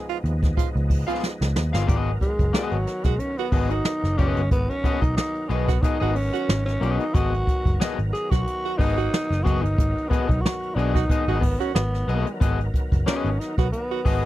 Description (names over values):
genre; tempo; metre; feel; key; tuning
funk; 91 BPM; 4/4; swing 56% on 16ths; G# dorian; A4 = 440 Hz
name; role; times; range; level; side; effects
growling tenor saxophone; melody; 0.0-14.2 s; F#3 to G#4; -27 LUFS; equal; none
overdriven tonewheel organ; sustained chords; 0.0-14.3 s; D#3 to A#4; -35 LUFS; right 1 dB; fast rotary speaker, chorus vibrato
warm tenor saxophone; second line; 0.1-14.0 s; E#4 to F#4; -28 LUFS; right 16 dB; none
vintage muted picked electric bass; bass; 0.2-14.3 s; F#1 to D#2; -24 LUFS; equal; none
jazz brush drum kit; drums; 0.3-14.2 s; hi-hat, kick drum, snare drum; -23 LUFS; equal; none
electric guitar at the edge of break-up; accompaniment; 1.1-14.2 s; B3 to E#5; -28 LUFS; left 7 dB; none
room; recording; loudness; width
little or no reverb; dry, close 1970s-style studio recording; -20 LUFS; side -15 dB against mid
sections
0.0-1.9 A section; 1.9-14.3 B section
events
band accent 0.0-1.9; drum fill 1.2-1.9; tenor saxophone solo 1.9-14.3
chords
0.0 C#9; 1.9 G#m7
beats
0.57 1.23 | 1.89 2.54 3.20 3.86 | 4.52 5.17 5.83 6.49 | 7.15 7.80 8.46 9.12 | 9.78 10.44 11.09 11.75 | 12.41 13.07 13.73